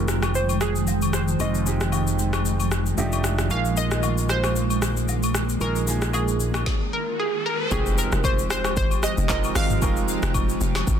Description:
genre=amapiano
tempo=114 BPM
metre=4/4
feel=swing 55% on 16ths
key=F minor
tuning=A4 = 440 Hz
part: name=analog pluck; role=melody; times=0.0-10.3 s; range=Ab4 to F5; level=-28 LUFS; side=right 1 dB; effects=chorus, low-pass filter, ping-pong delay
part: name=warm grand piano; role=accompaniment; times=0.0-11.0 s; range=F3 to Bb4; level=-30 LUFS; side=right 6 dB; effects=low-pass filter
part: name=granular cloud pad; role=sustained chords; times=0.0-11.0 s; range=Eb3 to G5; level=-29 LUFS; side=right 1 dB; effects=built-in reverb, sidechain pumping, low-pass filter
part: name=fingered electric bass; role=bass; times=0.0-6.6 s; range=F1 to Bb1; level=-24 LUFS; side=equal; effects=none
part: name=afro-pop drum kit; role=drums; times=0.1-11.0 s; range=handclaps, hi-hat, kick drum, rim click, shaker, snare drum, toms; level=-27 LUFS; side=left 1 dB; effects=soft clipping on snare
part: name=agogo bells and woodblock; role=percussion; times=0.2-10.9 s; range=none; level=-34 LUFS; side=left 10 dB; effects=none
part: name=riser and impact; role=sound effects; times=6.8-9.8 s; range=none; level=-32 LUFS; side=equal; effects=none
part: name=hollow log drum bass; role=bass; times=7.7-11.0 s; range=F1 to Ab1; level=-25 LUFS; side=equal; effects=none
room=light reverb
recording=dense, heavily limited modern master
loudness=-20 LUFS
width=side -8 dB against mid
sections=0.0-7.7 A section; 7.7-11.0 B section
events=filter sweep 0.0-7.7; riser 6.8-7.7; drop 7.7-11.0; impact 7.7-9.8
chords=0.0 Fm9; 3.0 F13; 3.5 Bb7sus4; 7.7 Fm9

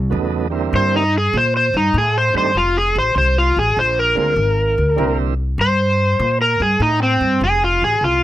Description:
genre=blues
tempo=99 BPM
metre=4/4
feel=swing 67% on 8ths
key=unclear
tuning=A4 = 440 Hz
part: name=upright bass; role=bass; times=0.0-8.2 s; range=F1 to Bb2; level=-19 LUFS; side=equal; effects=none
part: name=tonewheel organ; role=accompaniment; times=0.1-5.3 s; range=Db3 to F4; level=-21 LUFS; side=right 8 dB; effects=slow rotary speaker
part: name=overdriven slide guitar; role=melody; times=0.8-8.2 s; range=C4 to C5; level=-16 LUFS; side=equal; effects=none
room=light reverb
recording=none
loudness=-14 LUFS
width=side -14 dB against mid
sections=0.0-7.4 A section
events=electric slide guitar solo 0.0-8.2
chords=0.0 C9; 2.5 F; 3.8 Bb9; 5.0 C9; 7.4 F

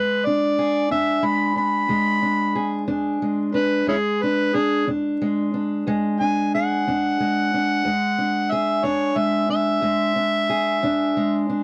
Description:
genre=acoustic country blues, solo or duo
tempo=60 BPM (dotted quarters)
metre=12/8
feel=straight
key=E mixolydian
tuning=A4 = 440 Hz
part: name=overdriven harmonica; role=melody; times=0.0-11.5 s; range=C#4 to B5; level=-24 LUFS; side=equal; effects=none
part: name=fingerpicked steel-string acoustic guitar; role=accompaniment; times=0.0-11.6 s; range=E2 to G#4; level=-24 LUFS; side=equal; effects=none
room=moderate booth ambience, RT60 0.2 s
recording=dry, close 1970s-style studio recording, vinyl crackle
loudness=-21 LUFS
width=mono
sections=0.0-11.6 A section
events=harmonica solo 0.0-11.6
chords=0.0 E7

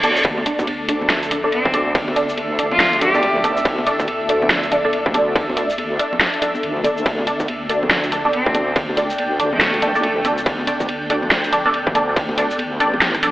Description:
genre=deep dubstep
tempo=141 BPM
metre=4/4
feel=swing 61% on 16ths, half-time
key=unclear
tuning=A4 = 442 Hz
part: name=granular cloud pad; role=sustained chords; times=0.0-13.3 s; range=D4 to A5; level=-24 LUFS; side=equal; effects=built-in reverb, wide subtle chorus
part: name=filtered dub chord stab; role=stabs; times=0.0-13.3 s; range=D4 to D5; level=-21 LUFS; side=right 1 dB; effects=phaser, ensemble chorus, dub echo
part: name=deep soft wobble bass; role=bass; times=0.0-13.3 s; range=A1 to D2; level=-26 LUFS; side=equal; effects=chorus, tube saturation
part: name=dubstep drum kit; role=drums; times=0.0-13.3 s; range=hi-hat, ride cymbal, rim click, shaker, snare drum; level=-22 LUFS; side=equal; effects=studio reverb
part: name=congas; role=percussion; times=0.0-13.3 s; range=none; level=-29 LUFS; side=left 1 dB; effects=dub echo
part: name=electronic kick drum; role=drums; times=0.2-12.3 s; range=none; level=-21 LUFS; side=equal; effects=distortion, studio reverb
part: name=rich cello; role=melody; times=1.5-3.6, 8.3-10.2 s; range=A3 to G4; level=-22 LUFS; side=equal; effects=dub echo
room=wet plate reverb, RT60 2.1 s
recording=dreamy mix soaked in reverb, telephone sound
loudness=-16 LUFS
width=side -16 dB against mid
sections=0.0-13.3 A section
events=drum fill 13.0-13.3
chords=0.0 D5

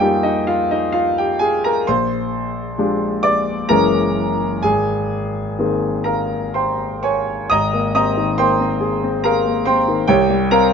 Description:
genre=classical, impressionist solo piano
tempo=61-72 BPM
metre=3/4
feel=rubato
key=Ab major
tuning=A4 = 441 Hz
part: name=clear concert grand piano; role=solo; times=0.0-10.7 s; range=Gb1 to Eb6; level=-15 LUFS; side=equal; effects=none
room=light reverb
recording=nothing above 7.7 kHz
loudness=-16 LUFS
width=side -6 dB against mid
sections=0.0-7.5 A section; 7.5-10.7 A section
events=none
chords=0.0 Fm11; 1.9 Bb13; 3.7 Gb9; 4.6 Abadd9; 10.1 C7(no3)

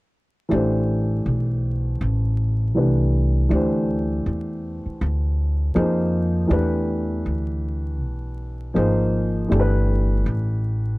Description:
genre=hip hop, jazz-hop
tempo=80 BPM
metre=4/4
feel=swing 58% on 16ths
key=unclear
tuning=A4 = 436 Hz
part: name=dark concert grand piano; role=accompaniment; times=0.5-11.0 s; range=E3 to C5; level=-23 LUFS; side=equal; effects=none
part: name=upright bass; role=bass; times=0.5-11.0 s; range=G1 to F2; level=-22 LUFS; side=equal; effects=none
room=little or no reverb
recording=dry, close 1970s-style studio recording, vinyl crackle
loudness=-19 LUFS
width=side -21 dB against mid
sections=0.5-11.0 A section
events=none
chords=0.5 Am9; 3.5 D9sus4; 5.8 Fm7; 6.5 Em7; 8.8 G#add9; 9.5 Gadd9

